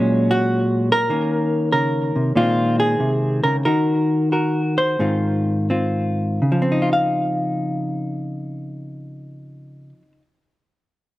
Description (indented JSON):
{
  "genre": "solo jazz",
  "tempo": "82-96 BPM",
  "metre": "4/4",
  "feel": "swing 68% on 8ths",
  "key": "Db major",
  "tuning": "A4 = 440 Hz",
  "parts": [
    { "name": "hollow-body jazz guitar", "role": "solo", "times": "0.0-10.2 s", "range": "Ab2 to F5", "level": "-18 LUFS", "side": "equal", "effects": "slapback echo" }
  ],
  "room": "light reverb",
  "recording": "recorded outdoors, with no room sound",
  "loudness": "-17 LUFS",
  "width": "side -16 dB against mid",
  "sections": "0.0-1.1 A section; 1.1-6.4 B section; 6.4-9.4 C section",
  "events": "slowing down 1.1-6.4",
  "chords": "0.0 Gbadd9/Bb; 1.1 Eb5; 2.4 Bb9sus4; 3.6 Ebm; 5.0 Ab6; 6.4 Dbmaj9"
}